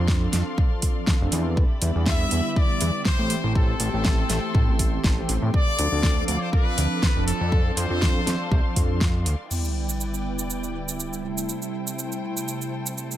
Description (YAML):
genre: nu-disco, nu disco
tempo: 121 BPM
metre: 4/4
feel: swing 54% on 16ths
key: A minor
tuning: A4 = 442 Hz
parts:
  - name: mellow synth brass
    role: accompaniment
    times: 0.0-13.2 s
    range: C3 to A4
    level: -30 LUFS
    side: right 1 dB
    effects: chorus, sidechain pumping, analog delay
  - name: muted studio string section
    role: sustained chords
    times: 0.0-13.2 s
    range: E4 to D6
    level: -36 LUFS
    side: left 1 dB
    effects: sidechain pumping
  - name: fat analog bass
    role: bass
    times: 0.0-9.4 s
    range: F1 to A2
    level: -24 LUFS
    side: equal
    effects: none
  - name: electronic kick drum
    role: drums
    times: 0.1-9.1 s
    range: none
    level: -22 LUFS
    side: equal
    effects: small room ambience
  - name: pop drum kit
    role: drums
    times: 0.1-13.2 s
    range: crash cymbal, hi-hat, shaker, snare drum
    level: -28 LUFS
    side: right 1 dB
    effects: small room ambience, analog delay
  - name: brilliant trumpet section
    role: melody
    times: 2.1-8.7 s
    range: A4 to E5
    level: -29 LUFS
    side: left 2 dB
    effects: analog delay
  - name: sub drop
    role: sound effects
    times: 9.5-11.5 s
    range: none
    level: -31 LUFS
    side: equal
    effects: none
room: light reverb, digital ambience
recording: echo-heavy mix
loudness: -21 LUFS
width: side -12 dB against mid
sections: 0.0-9.5 A section; 9.5-13.2 B section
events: impact 9.5-11.5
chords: 0.0 F6; 1.6 Em7; 3.3 Am7; 5.5 Dm7; 7.3 F6; 9.5 Em7; 11.2 Am7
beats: 0.09 0.58 1.08 | 1.57 2.07 2.56 3.06 | 3.56 4.05 4.55 5.04 | 5.54 6.04 6.53 7.03 | 7.52 8.02 8.52 9.01 | 9.51 10.00 10.50 10.99 | 11.49 11.99 12.48 12.98